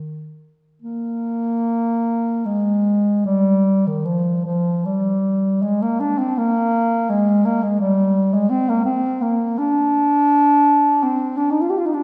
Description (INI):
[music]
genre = classical, free, expressive piece for unaccompanied bass clarinet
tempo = 50-88 BPM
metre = 3/4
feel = rubato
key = Eb major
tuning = A4 = 436 Hz
[part]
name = mellow bass clarinet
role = solo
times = 0.0-12.0 s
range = Eb3 to G4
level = -19 LUFS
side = equal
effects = none
[sound]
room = wet scoring stage reverb, RT60 1.6 s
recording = heard from further back in the room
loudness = -19 LUFS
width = mono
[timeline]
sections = 0.8-12.0 A section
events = none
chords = none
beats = | 0.83 1.66 2.46 | 3.27 4.07 4.86 | 5.63 6.38 7.12 | 7.81 8.51 9.23 | 9.96 10.68 11.41